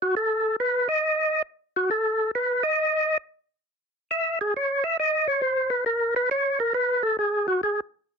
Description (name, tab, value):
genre	jazz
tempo	137 BPM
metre	4/4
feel	swing 67% on 8ths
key	unclear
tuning	A4 = 440 Hz
part	percussive tonewheel organ	solo	0.0-7.8 s	F#4 to E5	-22 LUFS	equal	slow rotary speaker
room	little or no reverb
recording	dry, close 1970s-style studio recording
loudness	-22 LUFS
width	side -5 dB against mid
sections	0.0-8.2 A section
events	tonewheel organ solo 0.0-8.2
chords	none